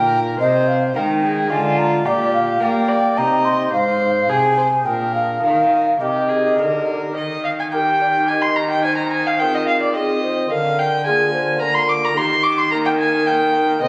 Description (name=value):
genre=classical, baroque-style sonata movement with continuo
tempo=108 BPM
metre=3/4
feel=straight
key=Eb major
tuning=A4 = 439 Hz
part: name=baroque flute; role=melody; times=0.0-13.9 s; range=G4 to C6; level=-22 LUFS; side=equal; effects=none
part: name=dark violin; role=second line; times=0.0-13.9 s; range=F4 to D6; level=-22 LUFS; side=equal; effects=none
part: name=pipe organ, stopped flute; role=accompaniment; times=0.0-13.9 s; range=Ab2 to Eb5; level=-30 LUFS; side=equal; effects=none
part: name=rich cello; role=bass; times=0.0-13.9 s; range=Ab2 to Bb3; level=-26 LUFS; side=equal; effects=none
room=wet recital hall reverb, RT60 1.6 s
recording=recorded on a phone in the room, club reverb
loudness=-18 LUFS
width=mono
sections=0.0-7.2 A section; 7.2-13.9 A section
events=none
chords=0.4 Ab/C; 1.5 Ddim; 2.1 Gm/Bb; 3.2 Cm; 3.7 Fm/Ab; 4.9 Bb7; 5.4 Eb; 8.8 Fm7/Eb; 10.5 Bb7/D; 12.2 Eb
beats=| 0.40 0.95 1.51 | 2.06 2.62 3.17 | 3.73 4.29 4.86 | 5.43 6.00 6.58 | 7.16 7.72 8.29 | 8.84 9.40 9.96 | 10.52 11.07 11.62 | 12.17 12.72 13.27 | 13.82